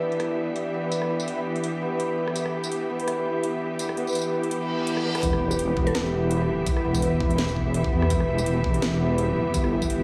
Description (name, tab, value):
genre	half-time drum and bass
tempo	167 BPM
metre	4/4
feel	swing 56% on 16ths, half-time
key	E minor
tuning	A4 = 440 Hz
part	rich studio string section	sustained chords	0.0-10.0 s	E3 to E5	-32 LUFS	equal	sidechain pumping
part	santur	arpeggios	0.0-10.0 s	B3 to E5	-31 LUFS	equal	digital delay
part	metallic inharmonic drone	texture	0.0-5.2 s	D4	-41 LUFS	equal	none
part	drum and bass drum kit	drums	0.1-10.0 s	hi-hat, rim click, snare drum, tambourine	-35 LUFS	equal	low-pass filter on snare, low-pass filter on hats, low-pass filter on cymbals, low-pass filter on perc, low-pass filter on room
part	reverse cymbal and sub drop	sound effects	4.6-6.7 s	none	-37 LUFS	equal	none
part	deep soft wobble bass	bass	5.2-10.0 s	E1 to E2	-27 LUFS	equal	chorus
part	electronic kick drum	drums	5.2-9.9 s	none	-29 LUFS	equal	none
part	mallet-like synth pluck	melody	5.9-6.0 s	A4	-36 LUFS	equal	chorus, cassette tape, digital delay
room	moderate lush hall reverb, RT60 1.6 s, digital ambience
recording	studio reverb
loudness	-25 LUFS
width	mono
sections	0.0-5.2 A section; 5.2-10.0 B section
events	reverse cymbal 4.6-5.2; drop 5.2-10.0; impact 5.2-6.7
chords	0.0 Em